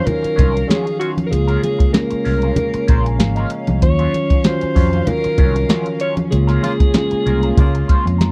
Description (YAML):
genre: lush 1970s-style soul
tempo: 96 BPM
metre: 4/4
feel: swing 54% on 16ths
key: unclear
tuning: A4 = 440 Hz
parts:
  - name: clear alto saxophone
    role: melody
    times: 0.0-8.2 s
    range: Gb4 to Db5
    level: -24 LUFS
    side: equal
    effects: tape echo
  - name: mellow tine electric piano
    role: accompaniment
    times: 0.0-8.3 s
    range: Db3 to C6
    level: -25 LUFS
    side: equal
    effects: none
  - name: warm studio string section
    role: sustained chords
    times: 0.0-8.3 s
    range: Eb3 to F5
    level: -33 LUFS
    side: equal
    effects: none
  - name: electric guitar through a small old amp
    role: riff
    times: 0.0-8.3 s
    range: Gb3 to C5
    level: -31 LUFS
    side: equal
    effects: wah
  - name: soft vintage rhythm box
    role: drums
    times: 0.1-8.3 s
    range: hi-hat, kick drum, snare drum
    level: -17 LUFS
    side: equal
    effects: none
  - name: congas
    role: percussion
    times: 0.1-8.3 s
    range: none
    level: -25 LUFS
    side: equal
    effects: none
  - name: fingered electric bass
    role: bass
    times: 0.2-8.3 s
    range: Ab1 to F2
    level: -20 LUFS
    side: equal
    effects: none
  - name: warm horn section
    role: stabs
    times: 6.6-8.0 s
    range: Bb3 to F4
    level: -29 LUFS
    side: equal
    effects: none
room: light reverb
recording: dry, close 1970s-style studio recording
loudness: -16 LUFS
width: mono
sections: 0.0-8.3 A section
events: tine electric piano fill 2.6-3.8, 7.6-8.3; band accent 6.3-8.3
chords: 0.0 Ebm9; 1.3 Db6; 3.8 Ebm9; 6.3 Db6